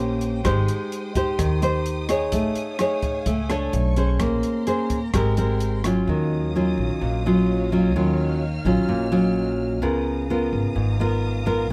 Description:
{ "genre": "bossa nova", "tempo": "128 BPM", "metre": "4/4", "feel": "straight", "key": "Ab major", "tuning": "A4 = 436 Hz", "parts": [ { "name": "nylon-string guitar", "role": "accompaniment", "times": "0.0-11.7 s", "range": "Ab2 to Db5", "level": "-24 LUFS", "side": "equal", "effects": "none" }, { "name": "warm symphonic string section", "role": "sustained chords", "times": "0.0-11.7 s", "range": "Bb4 to F6", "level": "-40 LUFS", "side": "equal", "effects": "none" }, { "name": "upright bass", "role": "bass", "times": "0.0-11.7 s", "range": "Ab1 to Eb2", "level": "-27 LUFS", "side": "equal", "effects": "none" }, { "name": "compact cocktail drum kit", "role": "drums", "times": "0.2-6.0 s", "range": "hi-hat, kick drum, rim click", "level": "-31 LUFS", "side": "equal", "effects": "none" } ], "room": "light reverb", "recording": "none", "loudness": "-22 LUFS", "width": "mono", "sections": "0.0-6.1 A section; 6.1-11.7 B section", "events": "none", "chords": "0.4 Abmaj7; 2.3 F7alt/A; 3.7 Bm9; 4.2 Bbm9; 5.1 Abmaj9; 6.1 Ebm9; 9.8 Db13", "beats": "| 0.45 0.92 1.39 1.86 | 2.33 2.79 3.26 3.73 | 4.20 4.67 5.14 5.61 | 6.08 6.55 7.01 7.48 | 7.95 8.42 8.89 9.36 | 9.83 10.30 10.77 11.23 | 11.70" }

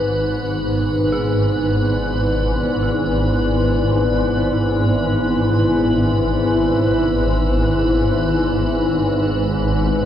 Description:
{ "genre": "dark ambient drone", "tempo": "free time", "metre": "none", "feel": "none", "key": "unclear", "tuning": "A4 = 440 Hz", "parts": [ { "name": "dark analog pad", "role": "sustained chords", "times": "0.0-10.1 s", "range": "G#3 to D5", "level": "-20 LUFS", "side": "left 1 dB", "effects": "chorus, phaser, shimmer reverb" }, { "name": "dark detuned synth bell", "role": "arpeggios", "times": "0.0-9.1 s", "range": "D#4 to G#4", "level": "-36 LUFS", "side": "right 2 dB", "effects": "none" }, { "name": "swarming drone", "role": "drone", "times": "0.0-10.1 s", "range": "G#1 to G#2", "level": "-18 LUFS", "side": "equal", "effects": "built-in reverb" }, { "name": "icy glass pad", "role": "texture", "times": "0.0-10.1 s", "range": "B4", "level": "-24 LUFS", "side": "left 1 dB", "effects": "chorus, built-in reverb, shimmer reverb" } ], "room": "wet huge ambient reverb, RT60 8.6 s", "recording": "worn, warbling old tape, cassette tape, warbly pitch drift", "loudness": "-16 LUFS", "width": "side -10 dB against mid", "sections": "0.0-10.1 A section", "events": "none", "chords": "0.0 Bm; 9.0 G#m", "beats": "free time" }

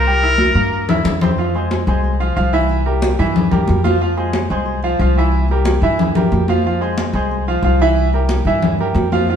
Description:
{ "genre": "latin, salsa", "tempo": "182 BPM", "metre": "4/4", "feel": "straight", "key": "F minor", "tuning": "A4 = 439 Hz", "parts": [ { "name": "bright trumpet", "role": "melody", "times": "0.0-1.0 s", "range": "Bb4", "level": "-16 LUFS", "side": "left 1 dB", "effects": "none" }, { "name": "bright grand piano", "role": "accompaniment", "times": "0.0-9.4 s", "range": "E3 to E6", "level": "-18 LUFS", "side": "right 2 dB", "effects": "none" }, { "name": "upright bass", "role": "bass", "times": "0.0-9.4 s", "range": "C2 to G2", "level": "-18 LUFS", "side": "left 1 dB", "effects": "none" }, { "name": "congas", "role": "percussion", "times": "0.1-9.4 s", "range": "none", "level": "-20 LUFS", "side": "left 2 dB", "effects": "none" } ], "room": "wet stone room reverb, RT60 1.3 s", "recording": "band playing live in one room", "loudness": "-14 LUFS", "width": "side -8 dB against mid", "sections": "0.0-1.4 A section; 1.4-9.4 B section", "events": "drum fill 0.4-1.4", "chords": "0.1 C7; 1.4 Fm; 2.7 C7; 4.0 Fm; 5.3 C7; 6.6 Fm; 8.0 C7", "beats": "| 0.06 0.39 0.72 1.05 | 1.38 1.71 2.04 2.37 | 2.70 3.03 3.36 3.69 | 4.01 4.34 4.67 5.00 | 5.33 5.66 5.99 6.32 | 6.65 6.98 7.31 7.64 | 7.96 8.29 8.62 8.95 | 9.28" }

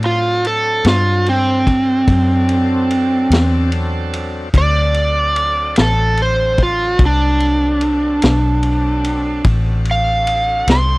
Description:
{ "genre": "slow blues", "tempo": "49 BPM (dotted quarters)", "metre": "12/8", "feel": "straight", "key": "D mixolydian", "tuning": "A4 = 440 Hz", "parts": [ { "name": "bright tonewheel organ", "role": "sustained chords", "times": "0.0-11.0 s", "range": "F#3 to A4", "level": "-28 LUFS", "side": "left 1 dB", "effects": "slow rotary speaker, overdrive" }, { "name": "vintage muted fingered electric bass", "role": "bass", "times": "0.0-11.0 s", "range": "A1 to A2", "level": "-17 LUFS", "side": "equal", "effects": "none" }, { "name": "vintage drum kit", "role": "drums", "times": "0.0-10.9 s", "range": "kick drum, ride cymbal, snare drum", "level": "-19 LUFS", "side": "equal", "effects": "none" }, { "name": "overdriven slide guitar", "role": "melody", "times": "0.1-11.0 s", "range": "C4 to C6", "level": "-15 LUFS", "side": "right 1 dB", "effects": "none" } ], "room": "little or no reverb", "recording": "dry, close 1970s-style studio recording", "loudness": "-13 LUFS", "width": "side -23 dB against mid", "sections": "0.0-11.0 A section", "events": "electric slide guitar solo 0.0-11.0", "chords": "0.0 D7", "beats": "0.85 2.08 3.31 | 4.54 5.77 7.00 8.23 | 9.46 10.70" }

